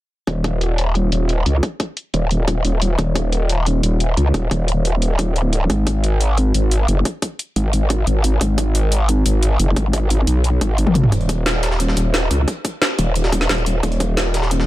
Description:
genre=dark technical drum and bass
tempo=177 BPM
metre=4/4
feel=straight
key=Eb minor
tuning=A4 = 440 Hz
part: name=growl bass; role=bass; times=0.3-14.7 s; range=Eb1 to Db2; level=-16 LUFS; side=equal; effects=chorus, tube saturation
part: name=drum and bass drum kit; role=drums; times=0.3-14.6 s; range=hi-hat, snare drum, toms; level=-22 LUFS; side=equal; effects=overdrive, low-pass filter on hats, low-pass filter on toms, low-pass filter on snare
part: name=electronic kick drum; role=drums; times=0.3-14.1 s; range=none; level=-24 LUFS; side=equal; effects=high-pass filter on kick, high-pass filter on room
part: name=jungle sampler-style drum kit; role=drums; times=11.1-14.7 s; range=hi-hat, snare drum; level=-27 LUFS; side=right 1 dB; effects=high-pass filter on hats, high-pass filter on snare, high-pass filter on room
room=digital ambience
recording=dark, warm production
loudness=-16 LUFS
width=side -16 dB against mid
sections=0.3-14.7 A section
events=filter sweep on drum 0.3-14.7; drum fill 10.9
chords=none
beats=| 0.27 0.61 0.95 1.29 | 1.63 1.97 2.31 2.65 | 2.99 3.33 3.66 4.00 | 4.34 4.68 5.02 5.36 | 5.70 6.04 6.38 6.71 | 7.05 7.39 7.73 8.07 | 8.41 8.75 9.09 9.43 | 9.77 10.11 10.44 10.78 | 11.12 11.46 11.80 12.14 | 12.48 12.82 13.16 13.49 | 13.83 14.17 14.51

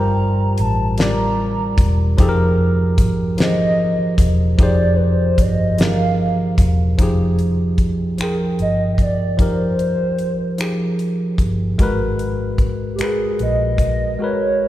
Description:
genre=slow six-eight R&B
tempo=50 BPM (dotted quarters)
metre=6/8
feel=straight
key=F dorian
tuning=A4 = 440 Hz
part: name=hollow clarinet-like synth lead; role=melody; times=0.0-14.7 s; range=G4 to Bb5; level=-22 LUFS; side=right 1 dB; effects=chorus, tremolo
part: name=tine electric piano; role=accompaniment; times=0.0-14.7 s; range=F3 to G5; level=-20 LUFS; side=equal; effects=none
part: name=vintage muted fingered electric bass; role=bass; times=0.0-14.2 s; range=E1 to Bb1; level=-20 LUFS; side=equal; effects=none
part: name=damped 70s drum kit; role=drums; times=0.6-14.0 s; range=finger snaps, hi-hat, kick drum, snare drum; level=-19 LUFS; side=equal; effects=none
room=wet church reverb, RT60 2.7 s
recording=recorded in a church or concert hall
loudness=-15 LUFS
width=side -14 dB against mid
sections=0.0-7.0 A section; 7.0-14.7 B section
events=drums muted 14.2-14.7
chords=0.0 Gm11; 2.2 Fm11; 7.0 Fm9; 11.8 Abm9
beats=0.99 | 2.19 3.39 | 4.59 5.79 | 6.99 8.19 | 9.39 10.59 | 11.79 12.99 | 14.19

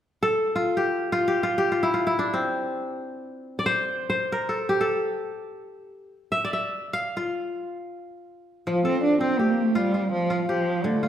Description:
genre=west african traditional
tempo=free time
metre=none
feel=none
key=F major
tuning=A4 = 440 Hz
part: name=kora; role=arpeggios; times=0.2-11.1 s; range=D3 to F5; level=-24 LUFS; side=left 1 dB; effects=none
part: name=dark cello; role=melody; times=8.7-11.1 s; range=F3 to D4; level=-22 LUFS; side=right 2 dB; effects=none
room=moderate scoring stage reverb, RT60 1.7 s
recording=recorded in a church or concert hall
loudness=-22 LUFS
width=side -10 dB against mid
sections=0.0-8.7 A section; 8.7-11.1 B section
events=kora solo 0.0-8.7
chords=0.0 N.C.; 8.7 F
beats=free time

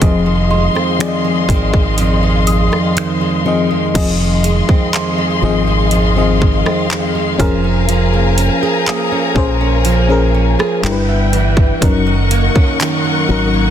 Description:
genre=contemporary R&B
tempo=61 BPM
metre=4/4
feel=straight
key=unclear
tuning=A4 = 442 Hz
part: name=FM electric piano with tremolo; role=accompaniment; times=0.0-13.7 s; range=F3 to G5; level=-18 LUFS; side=left 6 dB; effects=none
part: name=warm studio string section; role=sustained chords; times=0.0-13.7 s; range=Ab4 to Db6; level=-20 LUFS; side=left 4 dB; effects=none
part: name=nylon-string guitar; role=arpeggios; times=0.0-13.7 s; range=F2 to Ab4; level=-18 LUFS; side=right 8 dB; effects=none
part: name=deep dub fingered electric bass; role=bass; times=0.0-13.7 s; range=F1 to Bb1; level=-16 LUFS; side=equal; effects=none
part: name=trap drum kit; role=drums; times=0.0-13.0 s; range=crash cymbal, finger snaps, handclaps, hi-hat, kick drum, rim click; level=-17 LUFS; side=equal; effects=soft clipping on snare
part: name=small celesta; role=texture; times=0.5-11.3 s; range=C6 to F6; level=-29 LUFS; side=right 2 dB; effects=none
room=studio reverb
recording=dense, heavily limited modern master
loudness=-12 LUFS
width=side -10 dB against mid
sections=0.0-4.0 A section; 4.0-13.7 B section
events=FM electric piano fill 10.3-11.8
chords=0.0 Fm7; 7.4 Bbm7/F; 10.8 G6; 11.8 Gb6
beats=| 0.02 1.00 1.98 2.97 | 3.95 4.93 5.92 6.90 | 7.88 8.87 9.85 10.84 | 11.82 12.80

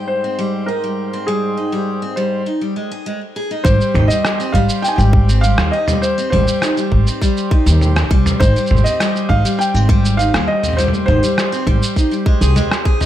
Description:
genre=folktronica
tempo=101 BPM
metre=4/4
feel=straight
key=Ab major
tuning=A4 = 440 Hz
part: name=hand-pumped harmonium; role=sustained chords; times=0.0-13.1 s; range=Ab2 to C5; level=-28 LUFS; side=right 3 dB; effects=none
part: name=picked steel-string acoustic guitar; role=arpeggios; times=0.0-13.1 s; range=G3 to Ab4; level=-20 LUFS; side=left 1 dB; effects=vintage 12-bit sampler grit, ping-pong delay
part: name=backwards swelling texture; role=texture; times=0.0-2.5 s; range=G5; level=-35 LUFS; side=left 3 dB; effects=built-in reverb
part: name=felt-muted upright piano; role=melody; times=0.1-12.8 s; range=Ab4 to Ab5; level=-20 LUFS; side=equal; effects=ping-pong delay
part: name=upright bass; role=bass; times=3.6-12.5 s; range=Ab1 to Eb2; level=-14 LUFS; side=equal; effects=none
part: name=electronic kick drum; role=drums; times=3.6-13.0 s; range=none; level=-14 LUFS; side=equal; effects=none
part: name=lo-fi sampler-style drum kit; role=drums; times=3.7-13.1 s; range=rim click, shaker, toms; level=-20 LUFS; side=equal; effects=low-pass filter on perc, low-pass filter on toms, low-pass filter on snare, low-pass filter on room
room=studio reverb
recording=none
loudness=-13 LUFS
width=side -12 dB against mid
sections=0.0-3.7 A section; 3.7-13.1 B section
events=filter sweep on steel-string acoustic guitar 0.0-3.7; break 2.5-3.7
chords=0.0 Abmaj7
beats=0.09 0.68 | 1.28 1.87 2.46 3.06 | 3.65 4.25 4.84 5.43 | 6.03 6.62 7.22 7.81 | 8.41 9.00 9.59 10.19 | 10.78 11.38 11.97 12.56

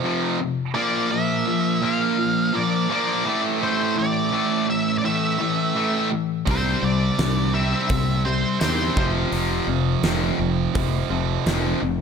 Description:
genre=classic rock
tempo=84 BPM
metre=4/4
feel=straight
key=unclear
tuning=A4 = 437 Hz
part: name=distorted electric guitar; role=riff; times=0.0-12.0 s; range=F2 to C4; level=-25 LUFS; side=left 11 dB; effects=overdrive
part: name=tight distorted guitar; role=riff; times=0.0-11.8 s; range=F2 to C4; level=-24 LUFS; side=right 13 dB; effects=distortion
part: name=octave-fuzz lead guitar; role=melody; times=0.7-9.1 s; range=C5 to F5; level=-26 LUFS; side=left 2 dB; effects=distortion, slapback echo
part: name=growling fingered electric bass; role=bass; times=6.5-12.0 s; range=F1 to E2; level=-25 LUFS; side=equal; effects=overdrive
part: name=huge arena drum kit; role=drums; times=6.5-11.6 s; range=hi-hat, kick drum, snare drum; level=-26 LUFS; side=right 1 dB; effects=none
room=small room reverb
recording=none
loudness=-19 LUFS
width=side -6 dB against mid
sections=0.0-12.0 A section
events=none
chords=0.0 F5; 0.8 Bb5; 3.3 A5; 6.5 C; 9.0 F5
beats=0.04 | 0.76 1.47 2.19 2.90 | 3.62 4.33 5.04 5.76 | 6.47 7.19 7.90 8.61 | 9.33 10.04 10.75 11.46

